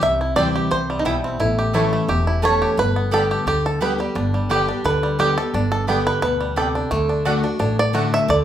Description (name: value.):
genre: bluegrass.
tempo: 174 BPM.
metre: 4/4.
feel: swing 53% on 8ths.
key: G major.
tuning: A4 = 440 Hz.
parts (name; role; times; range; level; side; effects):
bluegrass banjo; melody; 0.0-8.4 s; G3 to E5; -21 LUFS; right 1 dB; none.
picked steel-string acoustic guitar; accompaniment; 0.0-8.4 s; E2 to G4; -22 LUFS; left 1 dB; none.
upright bass; bass; 0.0-8.4 s; E1 to D2; -25 LUFS; equal; none.
mandolin; stabs; 0.4-8.0 s; A3 to A5; -26 LUFS; right 3 dB; none.
room: moderate large studio reverb, RT60 0.8 s.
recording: band playing live in one room.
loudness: -17 LUFS.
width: side -10 dB against mid.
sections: 0.0-4.2 A section; 4.2-8.4 A section.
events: five-string banjo solo 0.0-8.4.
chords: 0.0 C; 1.4 A; 2.8 G; 6.9 D.